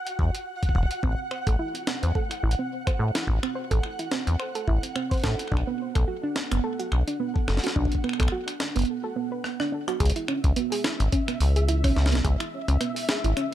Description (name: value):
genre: IDM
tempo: 107 BPM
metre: 4/4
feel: swing 56% on 16ths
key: C# phrygian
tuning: A4 = 440 Hz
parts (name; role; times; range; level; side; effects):
- flickering grainy texture; texture; 0.0-13.5 s; E5 to F#5; -36 LUFS; right 1 dB; built-in reverb
- jungle sampler-style drum kit; drums; 0.1-13.5 s; finger snaps, hi-hat, rim click, snare drum; -30 LUFS; left 1 dB; none
- deep acid bass; bass; 0.2-13.3 s; E1 to A2; -23 LUFS; equal; none
- electronic kick drum; drums; 0.2-12.4 s; none; -26 LUFS; equal; none
- soft round pluck; arpeggios; 1.0-13.5 s; B3 to C5; -29 LUFS; right 3 dB; chorus, digital delay
room: little or no reverb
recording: none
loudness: -23 LUFS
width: side -12 dB against mid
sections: 0.0-10.0 A section; 10.0-13.5 B section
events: break 8.9-10.0; drum fill 9.4-10.0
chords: 0.0 Esus2; 1.0 Am; 5.5 Bm7; 10.0 C#m7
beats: 0.47 | 1.03 1.59 2.15 2.71 | 3.27 3.83 4.39 4.96 | 5.52 6.08 6.64 7.20 | 7.76 8.32 8.88 9.44 | 10.00 10.56 11.12 11.69 | 12.25 12.81 13.37